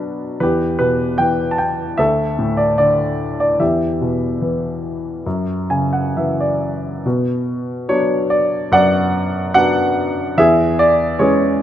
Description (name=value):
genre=classical, lyrical solo piano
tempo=63-77 BPM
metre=4/4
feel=rubato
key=E dorian, B dorian from 7.0 s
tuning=A4 = 440 Hz
part: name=clear grand piano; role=solo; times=0.0-11.6 s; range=D2 to B5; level=-15 LUFS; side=equal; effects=none
room=light reverb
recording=dark, warm production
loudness=-15 LUFS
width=side -11 dB against mid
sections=0.0-7.0 A section; 7.0-11.6 B section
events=grand piano fill 5.3-7.0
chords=0.4 Em; 2.0 D5; 3.6 Em; 5.3 F#5; 7.0 Bm; 10.4 E6